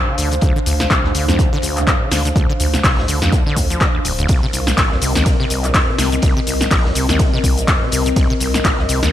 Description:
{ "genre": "acid house", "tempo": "124 BPM", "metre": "4/4", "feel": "swing 57% on 16ths", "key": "D phrygian", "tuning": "A4 = 440 Hz", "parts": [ { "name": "acid bass, saw", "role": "riff", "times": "0.0-9.1 s", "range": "Bb1 to F3", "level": "-21 LUFS", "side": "equal", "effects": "sidechain pumping, digital delay" }, { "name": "airy breathy pad", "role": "texture", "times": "0.0-9.1 s", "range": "C4 to F5", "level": "-23 LUFS", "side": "left 2 dB", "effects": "chorus, sidechain pumping" }, { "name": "saturated sub bass", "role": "bass", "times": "0.2-9.1 s", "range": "D1 to D2", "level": "-20 LUFS", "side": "equal", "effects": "sidechain pumping" }, { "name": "cloth-damped thuddy drum kit", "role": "drums", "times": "0.2-9.0 s", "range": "hi-hat, snare drum", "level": "-32 LUFS", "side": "left 1 dB", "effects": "none" }, { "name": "punchy analog drum machine", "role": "drums", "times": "0.2-9.1 s", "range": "handclaps, hi-hat, ride cymbal, shaker, snare drum", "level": "-20 LUFS", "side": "left 1 dB", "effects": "gated reverb" }, { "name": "electronic kick drum", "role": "drums", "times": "0.4-8.8 s", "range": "none", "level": "-17 LUFS", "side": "equal", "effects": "none" } ], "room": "light reverb", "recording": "bright 1980s-style digital production", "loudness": "-14 LUFS", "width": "side -12 dB against mid", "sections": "0.0-9.1 A section", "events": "none", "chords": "0.0 Dm7; 4.3 Cm7" }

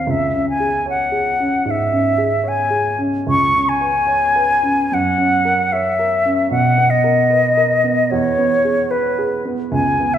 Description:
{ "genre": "classical, romantic duo for flute and grand piano", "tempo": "75 BPM", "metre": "4/4", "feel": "rubato", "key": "unclear", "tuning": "A4 = 440 Hz", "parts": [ { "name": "concert flute", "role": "melody", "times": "0.0-10.2 s", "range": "B4 to C#6", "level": "-16 LUFS", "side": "left 1 dB", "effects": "none" }, { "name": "warm baby grand piano", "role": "accompaniment", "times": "0.0-10.2 s", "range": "C#2 to C#5", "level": "-20 LUFS", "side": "right 2 dB", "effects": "none" } ], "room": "wet recital hall reverb, RT60 1.6 s", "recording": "heard from further back in the room", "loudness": "-14 LUFS", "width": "side -10 dB against mid", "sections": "0.0-10.2 A section", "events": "none", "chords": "0.1 C#m; 3.3 C#5; 4.9 F#; 6.5 Bmaj7; 8.1 E" }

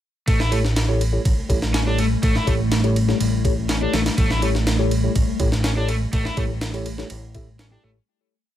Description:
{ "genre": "breakbeat, breaks", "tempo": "123 BPM", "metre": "4/4", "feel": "straight", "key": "unclear", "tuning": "A4 = 443 Hz", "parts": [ { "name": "warbly tape-like pad", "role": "sustained chords", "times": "0.7-8.0 s", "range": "G3 to A3", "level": "-27 LUFS", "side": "left 1 dB", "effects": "chorus, built-in reverb, phaser, sidechain pumping" }, { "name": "crunchy overdriven guitar", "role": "riff", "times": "0.3-7.9 s", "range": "A3 to E4", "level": "-27 LUFS", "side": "left 2 dB", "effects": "ping-pong delay" }, { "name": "fat analog bass", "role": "bass", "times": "0.3-8.0 s", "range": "A1", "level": "-22 LUFS", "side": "equal", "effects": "none" }, { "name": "breakbeat sampler-style drum kit", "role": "drums", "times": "0.3-7.7 s", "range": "kick drum, ride cymbal, snare drum", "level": "-23 LUFS", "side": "equal", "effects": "studio reverb" }, { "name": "mellow tine electric piano", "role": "stabs", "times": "0.5-8.0 s", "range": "E4 to G5", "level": "-28 LUFS", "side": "left 2 dB", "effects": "medium stereo tremolo, ping-pong delay" } ], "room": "little or no reverb", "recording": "none", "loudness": "-18 LUFS", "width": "side -12 dB against mid", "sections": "0.3-8.1 drop", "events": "drop 0.3-8.1; fade-out 5.5-8.1", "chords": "0.3 A7" }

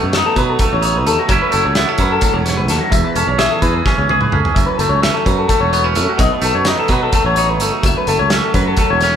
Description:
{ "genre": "math rock and midwest emo", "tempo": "257 BPM (eighths)", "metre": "7/8", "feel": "straight", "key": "unclear", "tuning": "A4 = 445 Hz", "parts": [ { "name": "twangy electric guitar", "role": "accompaniment", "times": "0.0-9.2 s", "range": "E2 to G#4", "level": "-18 LUFS", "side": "right 6 dB", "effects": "spring reverb" }, { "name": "electric guitar through a small old amp", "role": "arpeggios", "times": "0.0-9.1 s", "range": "F#4 to E5", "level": "-18 LUFS", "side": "left 4 dB", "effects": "phaser" }, { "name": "sustaining fretless electric bass", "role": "bass", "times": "0.0-9.2 s", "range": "E1 to B2", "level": "-20 LUFS", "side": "equal", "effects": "none" }, { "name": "loose indie drum kit", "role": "drums", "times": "0.1-9.1 s", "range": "hi-hat, kick drum, snare drum, toms", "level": "-18 LUFS", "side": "equal", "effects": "none" } ], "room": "moderate large studio reverb, RT60 1.4 s", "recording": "band playing live in one room", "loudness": "-12 LUFS", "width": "side -8 dB against mid", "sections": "0.0-9.2 A section", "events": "drum fill 3.9-4.6", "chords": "0.0 B9; 1.3 F#m9; 2.9 E6; 4.6 F#m7; 6.2 B9; 7.8 F#m7" }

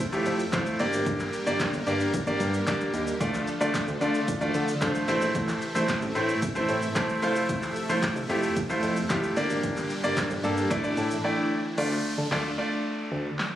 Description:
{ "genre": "dance-pop", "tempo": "112 BPM", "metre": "4/4", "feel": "straight", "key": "D minor", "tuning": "A4 = 441 Hz", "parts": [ { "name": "supersaw chords", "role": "sustained chords", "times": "0.0-11.8 s", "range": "A2 to E5", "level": "-33 LUFS", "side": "right 1 dB", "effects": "sidechain pumping" }, { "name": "clear concert grand piano", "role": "accompaniment", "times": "0.1-13.3 s", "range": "A3 to A5", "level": "-27 LUFS", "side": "equal", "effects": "sidechain pumping" }, { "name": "chorused synth bass", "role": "bass", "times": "0.1-13.3 s", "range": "F1 to D3", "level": "-31 LUFS", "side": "equal", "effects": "sidechain pumping" }, { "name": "punchy analog drum machine", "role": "drums", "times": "0.1-13.5 s", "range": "crash cymbal, handclaps, hi-hat, kick drum, shaker, snare drum", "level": "-31 LUFS", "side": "equal", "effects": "none" }, { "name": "downlifter", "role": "sound effects", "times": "11.8-13.6 s", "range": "none", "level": "-37 LUFS", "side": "equal", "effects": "none" } ], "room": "light reverb, digital ambience", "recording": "recorded on a phone in the room, studio reverb", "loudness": "-24 LUFS", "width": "side -12 dB against mid", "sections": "0.0-11.8 A section; 11.8-13.6 B section", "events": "grand piano fill 6.7-7.5, 10.7-11.8; silent gap 11.2-11.8", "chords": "0.0 Fmaj7; 0.8 Gm; 3.2 Dm; 5.1 Am; 7.2 Fmaj7; 9.4 Gm; 10.7 Asus4; 11.8 Dm" }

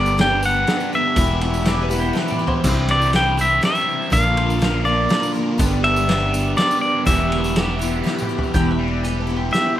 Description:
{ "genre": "folk rock and heartland rock", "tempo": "122 BPM", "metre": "3/4", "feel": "straight", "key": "unclear", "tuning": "A4 = 440 Hz", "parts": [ { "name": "pedal steel guitar", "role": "melody", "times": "0.0-9.8 s", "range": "D5 to G5", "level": "-20 LUFS", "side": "equal", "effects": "none" }, { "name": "picked twelve-string acoustic guitar", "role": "accompaniment", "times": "0.0-9.8 s", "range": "G2 to B4", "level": "-26 LUFS", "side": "left 2 dB", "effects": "wide subtle chorus" }, { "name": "tonewheel organ", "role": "sustained chords", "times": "0.0-9.8 s", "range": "B3 to E5", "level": "-34 LUFS", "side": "equal", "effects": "none" }, { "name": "biting overdriven guitar", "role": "riff", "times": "0.0-9.8 s", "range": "E2 to G4", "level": "-24 LUFS", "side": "right 1 dB", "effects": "phaser" }, { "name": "fingered electric bass", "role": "bass", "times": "0.0-9.5 s", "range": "E1 to C2", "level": "-22 LUFS", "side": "equal", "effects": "none" }, { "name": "tambourine", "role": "percussion", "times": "0.1-8.5 s", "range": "none", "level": "-36 LUFS", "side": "right 2 dB", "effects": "none" }, { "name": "loose indie drum kit", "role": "drums", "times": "0.2-9.7 s", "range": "crash cymbal, hi-hat, kick drum, ride cymbal, snare drum, toms", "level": "-24 LUFS", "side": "equal", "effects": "none" }, { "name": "bowl-back mandolin", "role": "second line", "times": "1.7-2.8, 8.5-9.8 s", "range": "G4 to G5", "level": "-28 LUFS", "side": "right 1 dB", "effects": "none" } ], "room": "light reverb, studio reverb", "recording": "rough home demo mix", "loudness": "-16 LUFS", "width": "side -12 dB against mid", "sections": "0.0-8.6 A section; 8.6-9.8 B section", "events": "drum fill 2.2-2.6, 8.1-8.6", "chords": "0.0 G; 1.2 Em; 2.6 Cadd9; 4.1 Bb; 5.6 G; 7.1 Em" }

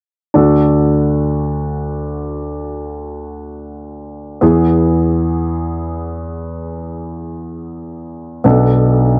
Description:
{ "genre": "pop", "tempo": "free time", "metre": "none", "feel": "none", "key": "unclear", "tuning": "A4 = 441 Hz", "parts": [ { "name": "warm baby grand piano", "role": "accompaniment", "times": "0.3-9.2 s", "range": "B1 to A4", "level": "-17 LUFS", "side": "equal", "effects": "none" } ], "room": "small room ambience", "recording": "dry, close 1970s-style studio recording", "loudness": "-15 LUFS", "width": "mono", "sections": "0.4-9.2 A section", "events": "none", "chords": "0.4 D; 4.4 E; 8.4 Bm7" }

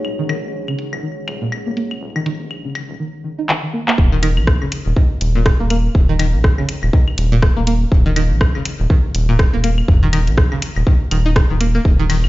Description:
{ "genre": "minimal techno", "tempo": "122 BPM", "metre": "4/4", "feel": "swing 58% on 16ths", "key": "Eb minor", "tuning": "A4 = 438 Hz", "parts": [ { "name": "round analog bass", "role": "bass", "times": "0.0-12.3 s", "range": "Eb1 to Bb1", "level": "-18 LUFS", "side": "equal", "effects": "tube saturation, sidechain pumping, high-pass filter" }, { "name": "electronic claves and toms", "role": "percussion", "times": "0.0-12.3 s", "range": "none", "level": "-26 LUFS", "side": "left 2 dB", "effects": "overdrive, studio reverb, ping-pong delay" }, { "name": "deep dark ambient pad", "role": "texture", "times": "0.0-3.0 s", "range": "Eb4 to Gb5", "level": "-29 LUFS", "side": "equal", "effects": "chorus, built-in reverb, sidechain pumping" }, { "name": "string-like resonator pluck", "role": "riff", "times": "0.2-12.2 s", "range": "Bb2 to Eb4", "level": "-22 LUFS", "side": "equal", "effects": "chorus, sidechain pumping, ping-pong delay" }, { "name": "house drum kit", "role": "drums", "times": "0.3-12.2 s", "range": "handclaps, hi-hat, ride cymbal, rim click", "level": "-21 LUFS", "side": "equal", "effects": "low-pass filter on hats, studio reverb, low-pass filter on snare, low-pass filter on cymbals" }, { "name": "electronic kick drum", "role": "drums", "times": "4.0-12.0 s", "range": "none", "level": "-14 LUFS", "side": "equal", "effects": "studio reverb" } ], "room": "little or no reverb", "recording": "played on a big sound system in a bare room, large studio reverb, nothing above 7.6 kHz, faint mains hum", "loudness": "-14 LUFS", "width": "side -18 dB against mid", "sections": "0.0-4.0 A section; 4.0-12.3 B section", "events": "drum fill 3.5-4.0; drop 4.0-12.3", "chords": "0.0 Ebsus4" }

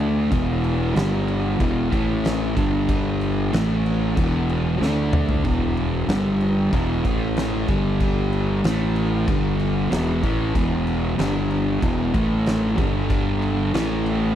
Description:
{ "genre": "stoner and doom metal", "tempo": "94 BPM", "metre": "4/4", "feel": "straight", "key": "unclear", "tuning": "A4 = 440 Hz", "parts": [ { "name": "thick fuzz guitar", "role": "riff", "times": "0.0-14.4 s", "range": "E2 to D4", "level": "-22 LUFS", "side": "equal", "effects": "distortion" }, { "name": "fuzz fingered electric bass", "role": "bass", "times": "0.0-14.3 s", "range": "E1 to D2", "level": "-25 LUFS", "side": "equal", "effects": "overdrive" }, { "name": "oversized low-tuned drum kit", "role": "drums", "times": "0.0-14.2 s", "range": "crash cymbal, kick drum, snare drum, toms", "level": "-26 LUFS", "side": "equal", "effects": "none" } ], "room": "little or no reverb", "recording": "none", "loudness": "-19 LUFS", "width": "side -10 dB against mid", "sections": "0.0-14.4 A section", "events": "drum fill 4.8-5.5", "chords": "0.3 E5; 1.0 G5; 1.6 E5; 1.9 A5; 2.6 G5; 3.5 A5; 4.2 E5; 4.8 D5; 5.5 E5; 6.1 G5; 6.7 E5; 7.0 A5; 7.7 G5; 8.6 A5; 9.3 G5; 9.9 E5; 11.2 G5; 11.8 E5; 12.1 A5; 12.8 G5; 13.7 A5" }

